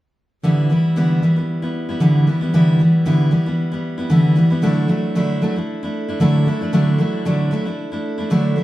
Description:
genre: pop.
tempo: 114 BPM.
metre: 4/4.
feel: swing 55% on 16ths.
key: unclear.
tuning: A4 = 438 Hz.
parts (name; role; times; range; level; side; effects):
picked steel-string acoustic guitar; accompaniment; 0.4-8.6 s; D3 to E4; -15 LUFS; equal; none.
room: moderate large studio reverb, RT60 1.2 s.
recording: band playing live in one room, lossy compression artefacts.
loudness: -15 LUFS.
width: side -16 dB against mid.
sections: 0.4-8.6 A section.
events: none.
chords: 0.4 G6/D; 4.6 Dadd9.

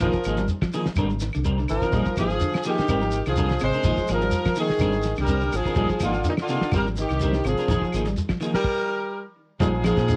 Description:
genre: afrobeat.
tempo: 125 BPM.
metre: 4/4.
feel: swing 54% on 16ths.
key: unclear.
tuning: A4 = 444 Hz.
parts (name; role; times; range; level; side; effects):
bright horn section; melody; 0.0-10.2 s; Eb4 to C5; -30 LUFS; equal; cassette tape.
growling tenor saxophone; second line; 0.0-10.2 s; Bb2 to Ab3; -31 LUFS; equal; none.
clean electric guitar; arpeggios; 0.0-10.2 s; C3 to G3; -33 LUFS; equal; spring reverb, analog delay.
semi-hollow electric guitar; stabs; 0.0-10.1 s; F3 to Bb4; -31 LUFS; equal; analog chorus.
deep dub fingered electric bass; bass; 0.0-10.2 s; Ab1 to Bb2; -29 LUFS; equal; none.
cloth-damped thuddy drum kit; drums; 0.0-10.2 s; crash cymbal, hi-hat, kick drum, ride cymbal, snare drum; -31 LUFS; equal; cassette tape.
shekere; percussion; 0.0-10.2 s; none; -32 LUFS; equal; none.
claves; percussion; 0.3-10.0 s; none; -41 LUFS; equal; none.
warm baritone saxophone; second line; 9.6-10.2 s; Ab2; -36 LUFS; equal; none.
room: small room ambience.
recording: home recording on cassette.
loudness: -24 LUFS.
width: mono.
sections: 0.0-9.6 A section.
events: stop 8.6-9.6.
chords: 0.0 Bb7sus4; 1.0 Abmaj9#11; 3.9 Bb7sus4; 4.8 Abmaj9#11; 7.7 Bb7sus4; 8.6 N.C.; 9.6 Bb7sus4.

